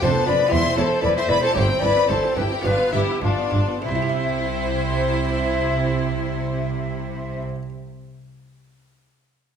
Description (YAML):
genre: classical, baroque-style concerto movement with solo episodes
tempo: 97-122 BPM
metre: 4/4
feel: straight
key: C major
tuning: A4 = 441 Hz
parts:
  - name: mellow alto recorder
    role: melody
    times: 0.0-7.4 s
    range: F4 to E5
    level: -24 LUFS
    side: left 2 dB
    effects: none
  - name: rich chamber violin section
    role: melody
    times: 0.0-7.4 s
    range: C5 to C6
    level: -28 LUFS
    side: left 4 dB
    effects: none
  - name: rich chamber violin section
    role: second line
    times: 0.0-7.4 s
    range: C4 to C5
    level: -28 LUFS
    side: left 1 dB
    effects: none
  - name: buff-stop harpsichord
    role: accompaniment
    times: 0.0-7.7 s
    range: E2 to E5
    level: -32 LUFS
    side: equal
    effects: none
  - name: rich studio viola section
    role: accompaniment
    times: 0.0-7.4 s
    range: B3 to E4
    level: -29 LUFS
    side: right 2 dB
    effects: none
  - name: clear chamber double bass section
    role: bass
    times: 0.0-7.4 s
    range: E1 to C2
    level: -27 LUFS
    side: right 3 dB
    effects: none
  - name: rich symphonic cello section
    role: bass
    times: 0.0-7.4 s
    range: E2 to C3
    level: -27 LUFS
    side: right 2 dB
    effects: none
room: wet recital hall reverb, RT60 1.6 s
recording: minimal, uncompressed stereo recording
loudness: -19 LUFS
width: side -7 dB against mid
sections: 0.0-3.8 A section; 3.8-8.8 B section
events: slowing down 0.0-3.8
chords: 0.0 G7/F; 0.5 C/E; 1.6 C/G; 2.7 G7; 3.8 C